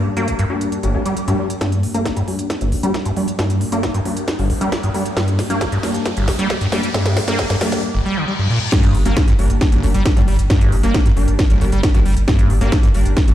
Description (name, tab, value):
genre	driving peak-time techno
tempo	135 BPM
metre	4/4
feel	straight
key	G minor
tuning	A4 = 437 Hz
part	acid bass, saw	riff	0.0-13.3 s	G1 to Bb3	-20 LUFS	equal	analog chorus, sidechain pumping, dub echo
part	rave stab	stabs	0.0-13.3 s	G3 to D4	-23 LUFS	left 2 dB	chorus, built-in reverb, sidechain pumping, dub echo
part	techno drum kit	drums	0.2-13.3 s	crash cymbal, hi-hat, snare drum	-24 LUFS	equal	sidechain pumping on hats, sidechain pumping on cymbals
part	swell, riser and reverse cymbal	sound effects	1.0-8.7 s	none	-30 LUFS	left 1 dB	none
part	electronic kick drum	drums	1.6-13.3 s	none	-17 LUFS	equal	high-pass filter on kick, high-pass filter on room
part	saturated sub bass	bass	8.9-13.2 s	G1	-18 LUFS	equal	sidechain pumping, low-pass filter
room	moderate plate reverb, RT60 1.0 s, digital ambience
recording	played on a big sound system in a bare room, large studio reverb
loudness	-15 LUFS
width	side -12 dB against mid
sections	0.0-1.6 A section; 1.6-8.7 B section; 8.7-13.3 C section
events	filter sweep on acid bass 0.0-1.6, 1.6-8.7; filter sweep on synth stab 0.0-1.6, 1.6-8.7; swell 1.0-1.6; build-up 1.6-8.7; drum fill 1.6-7.8; riser 1.6-7.8; reverse cymbal 7.8-8.7; drop 8.7-13.3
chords	0.0 Gm